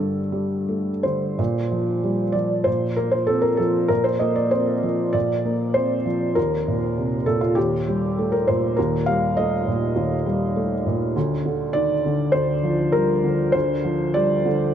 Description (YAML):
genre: neoclassical minimalist piano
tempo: 99 BPM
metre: 4/4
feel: rubato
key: Bb major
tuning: A4 = 439 Hz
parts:
  - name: felt-muted upright piano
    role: solo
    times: 0.0-14.7 s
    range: D2 to F5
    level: -19 LUFS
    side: equal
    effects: none
room: moderate huge ambient reverb, RT60 7.7 s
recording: none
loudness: -19 LUFS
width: side -9 dB against mid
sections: 0.0-1.4 A section; 1.4-14.7 A section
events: none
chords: 0.0 G5; 1.4 Bb; 6.4 Eb; 11.2 Bb/D